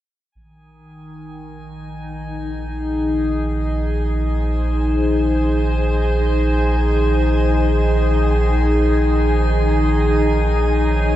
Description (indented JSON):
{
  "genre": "ambient",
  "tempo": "free time",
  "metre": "none",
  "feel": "none",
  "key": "unclear",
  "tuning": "A4 = 440 Hz",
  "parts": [
    { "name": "drifting glass-harmonics texture", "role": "texture", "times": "0.9-11.2 s", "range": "Ab5", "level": "-33 LUFS", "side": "equal", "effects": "chorus, built-in reverb" },
    { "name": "glassy FM pad", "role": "sustained chords", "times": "1.1-11.2 s", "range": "Eb3 to Db5", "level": "-19 LUFS", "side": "left 1 dB", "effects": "ensemble chorus, built-in reverb" },
    { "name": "round analog bass", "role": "bass", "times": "0.4-11.2 s", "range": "Bb1", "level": "-19 LUFS", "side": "equal", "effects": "none" }
  ],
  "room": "moderate shimmer reverb, RT60 8.1 s",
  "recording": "dark, warm production",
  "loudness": "-16 LUFS",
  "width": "side -13 dB against mid",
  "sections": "0.4-11.2 A section",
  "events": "fade-in on synth texture 0.4-11.2",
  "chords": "0.4 Bb9sus4",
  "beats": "free time"
}